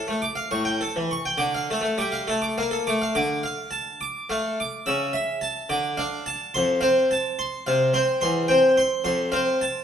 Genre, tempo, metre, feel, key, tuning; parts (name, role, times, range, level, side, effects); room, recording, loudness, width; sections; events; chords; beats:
classical, baroque-style suite movement for harpsichord; 70 BPM (dotted quarters); 6/8; uneven beats, rubato; D minor; A4 = 440 Hz
harpsichord; solo; 0.0-9.8 s; E2 to E6; -21 LUFS; equal
wet recital hall reverb, RT60 1.5 s; -21 LUFS; side -8 dB against mid
0.0-3.2 A section; 3.2-9.8 B section
0.0 Dm/A; 0.5 A7; 1.4 Dm; 4.9 A/C#; 5.7 Dm; 6.6 F; 8.2 C/E; 9.1 F
0.51 | 1.39 2.27 | 3.16 4.02 | 4.87 5.71 | 6.55 7.39 | 8.22 9.06